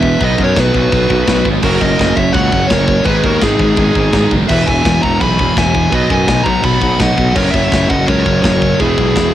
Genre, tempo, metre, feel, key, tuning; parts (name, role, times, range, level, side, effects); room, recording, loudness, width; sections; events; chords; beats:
heavy metal; 168 BPM; 4/4; straight; A4 = 440 Hz
dark smooth lead guitar; melody; 0.0-9.3 s; Ab4 to B5; -17 LUFS; left 1 dB; overdrive, cassette tape
high-gain lead guitar; second line; 0.0-9.3 s; Eb4 to G#5; -22 LUFS; right 3 dB; distortion
fuzz guitar; riff; 0.0-9.3 s; E2 to F#4; -18 LUFS; equal; distortion
high-gain distorted guitar; riff; 0.0-9.3 s; E2 to B3; -21 LUFS; right 9 dB; distortion
scooped high-gain guitar; riff; 0.0-9.3 s; E2 to B3; -23 LUFS; left 10 dB; distortion
fuzz fingered electric bass; bass; 0.0-9.3 s; E1 to F#2; -16 LUFS; equal; overdrive
tight metal drum kit; drums; 0.0-9.2 s; china cymbal, crash cymbal, kick drum, snare drum; -18 LUFS; equal
little or no reverb; home recording on cassette; -10 LUFS; side -12 dB against mid
0.0-9.3 A section
0.2 B; 1.6 Gb; 3.1 Abm; 4.5 E; 5.9 B; 7.4 Gb; 8.8 E
| 0.20 0.55 0.91 1.27 | 1.63 1.99 2.34 2.70 | 3.06 3.42 3.77 4.13 | 4.49 4.85 5.21 5.57 | 5.92 6.28 6.64 7.00 | 7.36 7.72 8.07 8.43 | 8.79 9.15